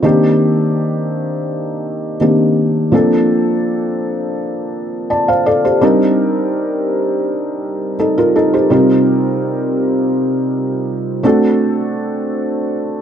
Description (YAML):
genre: R&B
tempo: 83 BPM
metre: 4/4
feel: straight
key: C dorian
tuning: A4 = 441 Hz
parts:
  - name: felt-muted upright piano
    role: solo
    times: 0.0-13.0 s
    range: C3 to A5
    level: -13 LUFS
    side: equal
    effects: none
room: light reverb, small room ambience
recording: dark, warm production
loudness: -13 LUFS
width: side -8 dB against mid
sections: 0.0-5.8 A section; 5.8-13.0 B section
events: none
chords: 0.0 Cm7; 2.9 Bbmaj9; 5.8 Cm7; 8.7 F7sus4/C; 11.2 D7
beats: | 0.04 0.76 1.48 2.20 | 2.93 3.65 4.37 5.09 | 5.82 6.54 7.26 7.99 | 8.71 9.43 10.16 10.88 | 11.60 12.32